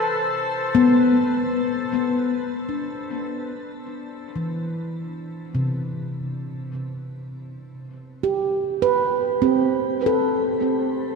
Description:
ambient; 76 BPM; 3/4; straight; A4 = 440 Hz
handpan; arpeggios; 0.7-11.2 s; C3 to B4; -21 LUFS; equal; shimmer reverb, diffuse ambient delay
wet cathedral reverb, RT60 5.1 s; -20 LUFS; side -4 dB against mid
0.0-1.8 A section; 1.8-11.2 B section
fade-in on handpan 1.8-11.2
0.0 N.C.; 1.8 Cadd9; 6.5 Am9/C

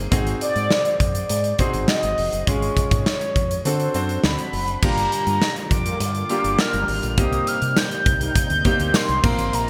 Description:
1980s-style pop; 102 BPM; 4/4; straight; A4 = 441 Hz
clear concert grand piano; accompaniment; 0.0-9.7 s; Ab3 to C5; -30 LUFS; equal; lush chorus
fingered electric bass; bass; 0.0-9.7 s; F1 to D3; -28 LUFS; equal
big rock drum kit; drums; 0.1-9.7 s; crash cymbal, hi-hat, kick drum, snare drum, tambourine; -24 LUFS; equal
mellow horn-like synth lead; melody; 0.4-9.7 s; C5 to G6; -26 LUFS; equal; chorus, digital delay
sweeping resonant pad; sustained chords; 4.8-9.7 s; C3 to F4; -35 LUFS; equal; chorus
mellow synth brass; stabs; 5.9-9.2 s; G3 to Bb4; -35 LUFS; equal; chorus, phaser
moderate lush hall reverb, RT60 1.5 s, small room ambience; bright 1980s-style digital production; -21 LUFS; mono
0.0-4.8 A section; 4.8-9.7 B section
0.1 Ab7; 2.5 Db/Ab; 3.6 D7; 4.8 Gm7; 7.2 Cm7

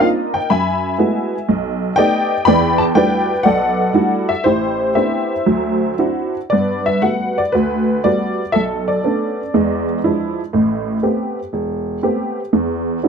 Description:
solo jazz; 120 BPM; 4/4; swing 69% on 8ths, rubato; A4 = 440 Hz
honky-tonk upright piano; solo; 0.0-13.1 s; E1 to B5; -15 LUFS; equal
little or no reverb; close, detailed microphones; -15 LUFS; side -6 dB against mid
0.0-6.5 A section; 6.5-13.1 B section
0.5 F#m11; 1.5 B7alt; 2.5 Em11; 4.4 Am11; 5.5 D9; 6.5 Gmaj9; 8.6 Bm9; 9.5 E7b9; 10.5 Am9; 12.5 N.C.

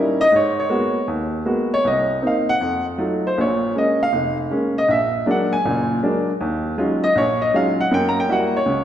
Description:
solo jazz; 158 BPM; 4/4; swing 66% on 8ths; A4 = 440 Hz
warm upright piano; solo; 0.0-8.8 s; F1 to Bb5; -17 LUFS; equal
wet recital hall reverb, RT60 1.6 s; recorded in a church or concert hall; -17 LUFS; side -10 dB against mid
0.0-8.8 A section
upright piano solo 0.0-8.8
0.3 Abm9; 1.8 Cm7b5; 2.6 F7b9; 3.4 Bbm7; 4.9 Bbaug7; 6.4 Ebm11; 7.9 Gb7b9

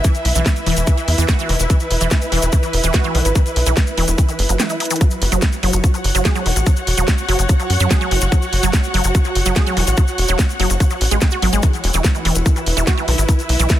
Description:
psychedelic trance; 145 BPM; 4/4; straight; A4 = 440 Hz
wide unison pluck; riff; 0.0-13.6 s; D#3 to G#4; -22 LUFS; moving between left 3 dB and right 5 dB; auto-pan, sidechain pumping, ping-pong delay
electronic kick drum; drums; 0.0-13.8 s; -15 LUFS; equal
garage drum kit; drums; 0.0-13.8 s; hi-hat, snare drum; -22 LUFS; right 1 dB
tube shaker; percussion; 0.0-13.8 s; -27 LUFS; left 4 dB
dark symphonic string section; texture; 0.0-13.8 s; E4 to F#5; -24 LUFS; equal; sidechain pumping
tight sequencer bass; bass; 0.3-13.7 s; E1 to F#2; -17 LUFS; equal; tube saturation
little or no reverb; dense, heavily limited modern master; -14 LUFS; side -13 dB against mid
0.0-13.8 A section
kick drops out 4.6-5.0; drum fill 4.8
0.0 E5; 5.0 F#5; 11.6 E5

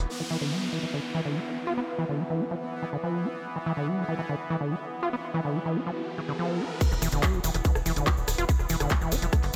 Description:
psychedelic trance; 143 BPM; 4/4; straight; E phrygian; A4 = 440 Hz
bubbling stepped-filter texture; sustained chords; 0.0-9.6 s; E3 to B3; -38 LUFS; equal; chorus, built-in reverb, sidechain pumping
tight sequencer bass; bass; 0.0-0.1, 6.9-9.6 s; D1 to G1; -32 LUFS; equal; tube saturation
downlifter and riser; sound effects; 0.1-6.8 s; -41 LUFS; equal
overdriven acid bass; riff; 0.2-9.6 s; D3 to F4; -32 LUFS; equal; sidechain pumping, dub echo
drum and bass drum kit; drums; 6.8-9.6 s; crash cymbal, handclaps, hi-hat, rim click; -35 LUFS; equal
electronic kick drum; drums; 6.8-9.4 s; -26 LUFS; equal
tube shaker; percussion; 6.8-9.6 s; -40 LUFS; equal
moderate lush hall reverb, RT60 1.8 s, digital ambience; -29 LUFS; mono
0.1-6.8 A section; 6.8-9.6 B section
riser 4.8-6.8; drop 6.8-9.6
0.1 E5

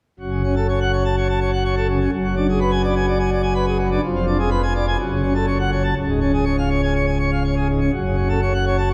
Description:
classical, organ toccata; 124 BPM; 4/4; straight; F# minor; A4 = 443 Hz
pipe organ, plenum; solo; 0.2-8.9 s; C#1 to A5; -20 LUFS; equal
wet church reverb, RT60 3.4 s; dark, warm production; -20 LUFS; mono
0.2-8.9 A section
0.2 F#m; 2.1 G#m7b5/F#; 4.0 Fdim7; 5.0 F#m; 6.0 C#; 7.9 F#m

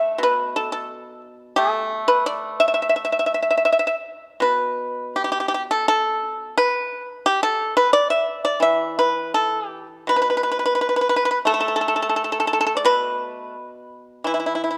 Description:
chinese traditional, Chinese solo plucked strings; 81-89 BPM; 2/4; rubato; A4 = 438 Hz
pipa; solo; 0.0-14.8 s; B2 to E5; -21 LUFS; equal
light reverb; dark, warm production; -21 LUFS; mono
0.0-4.4 A section; 4.4-14.8 B section

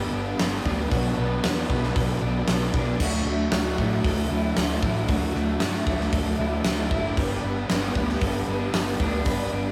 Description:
rock, shoegaze and dream pop; 115 BPM; 4/4; straight; G major; A4 = 440 Hz
ensemble organ-string; sustained chords; 0.0-9.7 s; F#4 to D6; -38 LUFS; equal
twelve-string electric guitar; arpeggios; 0.0-9.7 s; F#3 to A4; -35 LUFS; equal
overdriven electric guitar; riff; 0.0-9.7 s; G2 to D4; -32 LUFS; equal
raw garage guitar; riff; 0.0-9.7 s; G2 to D4; -34 LUFS; equal; overdrive
vintage muted fingered electric bass; bass; 0.0-9.7 s; F#1 to A2; -31 LUFS; equal
gated 80s drum kit; drums; 0.4-9.4 s; crash cymbal, hi-hat, kick drum, snare drum; -29 LUFS; equal
tambourine; percussion; 3.5-8.9 s; -47 LUFS; equal
wet small room ambience, RT60 0.5 s; rough rehearsal-room recording, warm saturation; -25 LUFS; mono
0.0-9.7 A section
0.0 Gadd9; 0.9 Bm7; 3.0 Dadd9; 7.2 Gadd9

